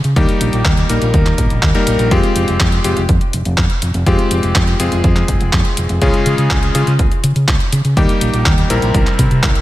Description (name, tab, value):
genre	italo disco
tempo	123 BPM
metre	4/4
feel	straight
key	F minor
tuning	A4 = 436 Hz
part	fingered electric bass	bass	0.0-9.6 s	F1 to Db3	-16 LUFS	equal	tube saturation
part	detuned 8-bit digital drum machine	drums	0.0-9.6 s	handclaps, hi-hat	-21 LUFS	equal	overdrive
part	bright electric grand piano	stabs	0.2-9.6 s	C3 to Bb4	-17 LUFS	left 2 dB	analog delay
part	electronic kick drum	drums	0.2-9.5 s	none	-16 LUFS	equal	none
room	light reverb, digital ambience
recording	none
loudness	-12 LUFS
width	side -15 dB against mid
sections	0.0-9.6 A section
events	none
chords	0.2 Eb; 2.1 Fmadd9; 6.0 Db; 8.0 Eb; 8.9 C